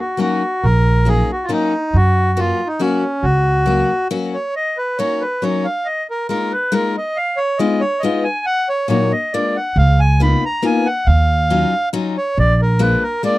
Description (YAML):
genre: musette waltz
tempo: 138 BPM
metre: 3/4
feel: straight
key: F# major, Eb minor from 4.6 s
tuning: A4 = 441 Hz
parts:
  - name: accordion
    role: melody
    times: 0.0-13.4 s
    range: C#4 to Cb6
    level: -18 LUFS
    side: right 1 dB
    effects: none
  - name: picked steel-string acoustic guitar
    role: accompaniment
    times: 0.2-13.4 s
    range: Bb2 to F#4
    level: -19 LUFS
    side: left 4 dB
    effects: none
  - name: upright bass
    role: bass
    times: 0.6-3.8, 9.8-12.9 s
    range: A#1 to F#2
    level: -14 LUFS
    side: right 1 dB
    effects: none
room: little or no reverb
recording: dry, close 1970s-style studio recording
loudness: -15 LUFS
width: side -17 dB against mid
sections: 0.0-4.6 A section; 4.6-13.4 B section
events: none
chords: 0.0 D#m7; 1.9 F#; 4.6 Ebm7; 5.9 Bb7sus4; 7.2 Fm7b5; 8.5 Ebm; 9.3 Bb7; 9.8 Db13; 11.1 Ebm9; 12.4 Bb7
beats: 0.20 | 0.64 1.08 1.51 | 1.95 2.38 2.81 | 3.25 3.68 4.13 | 4.57 5.01 5.44 | 5.88 6.31 6.74 | 7.16 7.59 8.02 | 8.45 8.89 9.33 | 9.77 10.20 10.64 | 11.07 11.50 11.94 | 12.37 12.80 13.23